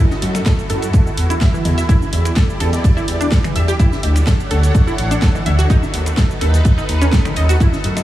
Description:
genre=progressive house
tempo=126 BPM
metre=4/4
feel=straight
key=unclear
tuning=A4 = 445 Hz
part: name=lush unison pad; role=sustained chords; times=0.0-8.0 s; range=D4 to F#5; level=-25 LUFS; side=equal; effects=chorus, phaser, sidechain pumping
part: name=wide unison pluck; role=arpeggios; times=0.0-7.7 s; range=D#3 to E5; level=-23 LUFS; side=right 1 dB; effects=sidechain pumping, analog delay
part: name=deep house drum kit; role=drums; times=0.1-8.0 s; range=finger snaps, hi-hat, shaker, snare drum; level=-25 LUFS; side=equal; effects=overdrive
part: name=open jazz drum kit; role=drums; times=0.1-8.0 s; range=ride cymbal, snare drum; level=-35 LUFS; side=right 3 dB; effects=none
part: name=electronic congas, bongos and toms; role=percussion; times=0.1-8.0 s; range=none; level=-30 LUFS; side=left 3 dB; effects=none
part: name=dark detuned saw bass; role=bass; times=0.2-8.0 s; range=A1 to F#2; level=-16 LUFS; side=equal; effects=tube saturation, sidechain pumping
part: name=electronic kick drum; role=drums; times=0.5-7.7 s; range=none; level=-15 LUFS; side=equal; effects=overdrive
room=light reverb, digital ambience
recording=small room ambience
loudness=-13 LUFS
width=side -14 dB against mid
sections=0.0-8.0 A section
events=none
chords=0.0 F#m7; 1.9 Em7; 3.8 Dmaj7; 5.7 B7/D#

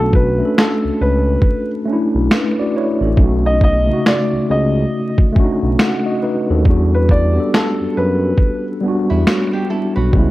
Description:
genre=lo-fi hip hop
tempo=69 BPM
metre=4/4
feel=swing 61% on 16ths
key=B minor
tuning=A4 = 438 Hz
part: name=dark upright piano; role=melody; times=0.0-8.6 s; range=A4 to D#5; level=-20 LUFS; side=equal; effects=low-pass filter
part: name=mellow tine electric piano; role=accompaniment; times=0.0-10.3 s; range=C#3 to F#5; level=-18 LUFS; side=equal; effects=medium stereo tremolo, cassette tape, low-pass filter
part: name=smooth synth bass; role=bass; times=0.0-10.3 s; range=A1 to F#2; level=-16 LUFS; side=equal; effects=none
part: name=lo-fi sampler-style drum kit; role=drums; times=0.1-10.3 s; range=finger snaps, kick drum, snare drum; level=-14 LUFS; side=equal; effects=none
part: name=nylon-string guitar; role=second line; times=9.1-10.3 s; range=B3 to B4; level=-23 LUFS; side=right 2 dB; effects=low-pass filter, analog delay
room=light reverb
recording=vinyl crackle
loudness=-13 LUFS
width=side -17 dB against mid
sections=0.0-10.3 A section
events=break 0.0-10.3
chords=0.0 Bm9; 3.2 B7; 6.7 Em7

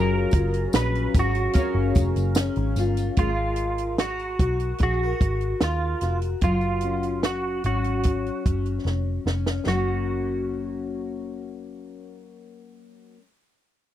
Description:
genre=indie pop, bedroom pop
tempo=74 BPM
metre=4/4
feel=straight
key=F# major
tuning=A4 = 439 Hz
part: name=semi-hollow electric guitar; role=melody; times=0.0-13.0 s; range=E#4 to B4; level=-28 LUFS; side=right 2 dB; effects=ensemble chorus, slapback echo
part: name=chorused retro synth keys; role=accompaniment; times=0.0-3.2 s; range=C#4 to A#5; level=-33 LUFS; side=right 2 dB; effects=cassette tape
part: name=fingerpicked steel-string acoustic guitar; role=accompaniment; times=0.0-13.2 s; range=F#3 to A#4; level=-30 LUFS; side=left 6 dB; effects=lush chorus, warbly pitch drift
part: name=vintage muted picked electric bass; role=bass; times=0.0-13.0 s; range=E#1 to D#2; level=-26 LUFS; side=equal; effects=none
part: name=compact cocktail drum kit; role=drums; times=0.3-9.9 s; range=hi-hat, kick drum, snare drum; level=-22 LUFS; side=right 1 dB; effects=none
part: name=tambourine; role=percussion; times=0.3-3.2 s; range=none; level=-42 LUFS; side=left 8 dB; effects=none
room=little or no reverb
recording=dry, close 1970s-style studio recording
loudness=-22 LUFS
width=side -12 dB against mid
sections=0.0-3.2 A section; 3.2-9.7 B section; 9.7-12.9 C section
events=drum fill 8.9-9.7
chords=0.0 F#maj7; 3.2 G#7sus2; 6.4 F#5; 9.7 F#

